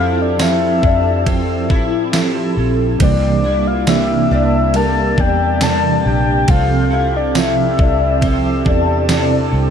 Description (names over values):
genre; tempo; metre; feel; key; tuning
dream pop; 69 BPM; 4/4; straight; unclear; A4 = 445 Hz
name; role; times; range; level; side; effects
soft octave-layered synth lead; melody; 0.0-8.7 s; D5 to A5; -19 LUFS; left 5 dB; chorus, tape echo
mellow electric guitar; accompaniment; 0.0-9.7 s; C3 to A4; -20 LUFS; right 7 dB; harmonic tremolo, wide subtle chorus
warm analog pad; sustained chords; 0.0-9.7 s; C3 to A4; -21 LUFS; right 1 dB; chorus
fingerpicked twelve-string acoustic guitar; arpeggios; 0.0-9.7 s; Bb3 to E4; -23 LUFS; left 6 dB; ensemble chorus, tape echo
vintage muted fingered electric bass; bass; 0.0-9.7 s; Bb1 to A2; -19 LUFS; equal; none
detuned 8-bit digital drum machine; drums; 0.4-9.3 s; kick drum, ride cymbal, snare drum, tambourine; -19 LUFS; equal; overdrive
room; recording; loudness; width
light reverb; none; -12 LUFS; side -8 dB against mid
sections
0.0-9.7 A section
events
none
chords
0.0 Fmaj7; 3.0 C9; 6.5 Fmaj7/C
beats
0.39 1.26 2.13 | 3.00 3.87 4.74 5.61 | 6.48 7.35 8.22 9.09